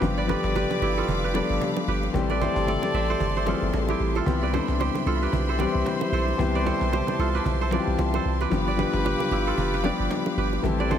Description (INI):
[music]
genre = afrobeats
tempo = 113 BPM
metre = 4/4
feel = swing 58% on 16ths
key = C major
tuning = A4 = 439 Hz
[part]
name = mellow horn section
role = second line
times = 0.0-11.0 s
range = C4 to D5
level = -30 LUFS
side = left 2 dB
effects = none
[part]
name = warm concert grand piano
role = accompaniment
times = 0.0-11.0 s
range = E3 to A4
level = -27 LUFS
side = left 6 dB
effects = none
[part]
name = rich studio string section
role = sustained chords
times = 0.0-11.0 s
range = G4 to D6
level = -32 LUFS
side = equal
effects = none
[part]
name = kora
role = riff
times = 0.0-11.0 s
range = E4 to E5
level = -30 LUFS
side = right 9 dB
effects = tape echo
[part]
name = punchy sub bass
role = bass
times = 0.0-11.0 s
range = F1 to C2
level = -27 LUFS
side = right 1 dB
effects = none
[part]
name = cajon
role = drums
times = 0.0-11.0 s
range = none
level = -37 LUFS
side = equal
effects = none
[part]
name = congas and bongos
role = percussion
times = 0.0-11.0 s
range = none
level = -34 LUFS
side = right 8 dB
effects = none
[sound]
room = light reverb, small room ambience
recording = none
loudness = -22 LUFS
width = side -9 dB against mid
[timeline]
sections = 0.0-11.0 A section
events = none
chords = 0.0 G7; 2.1 Am7; 4.3 Cmaj7; 8.5 G7